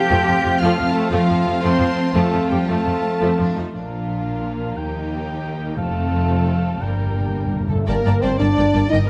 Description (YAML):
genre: cinematic, heroic adventure film score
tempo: 117 BPM (dotted quarters)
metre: 6/8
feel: straight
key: unclear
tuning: A4 = 440 Hz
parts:
  - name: rich symphonic violin section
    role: melody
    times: 0.0-9.1 s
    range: F4 to G6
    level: -35 LUFS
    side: equal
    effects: none
  - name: mellow clarinet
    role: second line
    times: 0.0-9.1 s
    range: C4 to Eb5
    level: -33 LUFS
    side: equal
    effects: none
  - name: mellow cor anglais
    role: second line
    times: 0.0-7.7 s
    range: F5 to G5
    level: -32 LUFS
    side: equal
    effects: none
  - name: small flute group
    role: second line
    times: 0.0-9.1 s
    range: A4 to Bb5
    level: -36 LUFS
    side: equal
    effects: none
  - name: warm symphonic violin section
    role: second line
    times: 0.0-9.0 s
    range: Bb3 to A5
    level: -35 LUFS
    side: equal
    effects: none
  - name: mellow French horn section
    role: sustained chords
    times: 0.0-9.1 s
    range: A3 to Eb4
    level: -28 LUFS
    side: equal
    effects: none
  - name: concert harp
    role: arpeggios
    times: 0.0-9.1 s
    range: F2 to C6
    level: -31 LUFS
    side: equal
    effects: none
  - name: dark trumpet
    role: stabs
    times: 0.0-9.1 s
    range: F4 to G5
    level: -29 LUFS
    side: equal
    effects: none
  - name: rich symphonic cello section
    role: bass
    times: 0.0-9.1 s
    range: Eb2 to G4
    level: -27 LUFS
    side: equal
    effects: none
  - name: rich symphonic viola section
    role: accompaniment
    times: 0.1-9.0 s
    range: C3 to Eb5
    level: -31 LUFS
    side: equal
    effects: none
  - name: warm studio double bass section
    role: bass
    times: 0.1-9.0 s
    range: F1 to F2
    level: -26 LUFS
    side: equal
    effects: none
  - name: timpani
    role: percussion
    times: 6.8-7.8 s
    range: G2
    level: -30 LUFS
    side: equal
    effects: none
room: moderate scoring stage reverb, RT60 1.9 s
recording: none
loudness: -20 LUFS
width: mono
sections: 0.0-3.7 A section; 3.7-7.9 B section; 7.9-9.1 C section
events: timpani fill 6.8-7.9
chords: 0.0 F; 3.7 Bb; 4.8 Eb; 5.8 F; 6.8 Gm; 7.9 Gmadd9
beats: 0.10 | 0.61 1.11 | 1.62 2.15 | 2.68 3.21 | 3.74 4.26 | 4.77 5.28 | 5.78 6.30 | 6.82 7.35 | 7.88 8.40 | 8.91